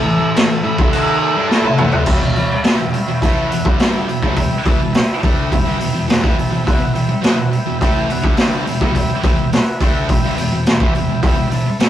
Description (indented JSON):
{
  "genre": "garage rock duo or trio",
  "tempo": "105 BPM",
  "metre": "4/4",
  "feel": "straight",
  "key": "E minor",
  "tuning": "A4 = 438 Hz",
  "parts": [
    { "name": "combo organ", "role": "sustained chords", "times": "0.0-11.9 s", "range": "A4 to B5", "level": "-23 LUFS", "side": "equal", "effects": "none" },
    { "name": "thick fuzz guitar", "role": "riff", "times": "0.0-11.9 s", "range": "E2 to A4", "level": "-18 LUFS", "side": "equal", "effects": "distortion" },
    { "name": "raw garage drum kit", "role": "drums", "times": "0.4-11.9 s", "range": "crash cymbal, hi-hat, kick drum, snare drum, toms", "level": "-15 LUFS", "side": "equal", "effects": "none" }
  ],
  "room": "moderate small room reverb, RT60 0.5 s",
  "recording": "rough rehearsal-room recording, warm saturation, cassette tape",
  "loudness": "-13 LUFS",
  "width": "side -11 dB against mid",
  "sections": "0.0-2.1 A section; 2.1-11.9 B section",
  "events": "drum fill 1.5-2.1; transistor combo organ fill 5.8-6.7",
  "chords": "0.0 A5; 2.1 Em",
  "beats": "0.35 0.93 1.50 | 2.08 2.65 3.23 3.80 | 4.37 4.95 5.52 6.09 | 6.66 7.24 7.81 8.38 | 8.95 9.52 10.09 10.66 | 11.23 11.80"
}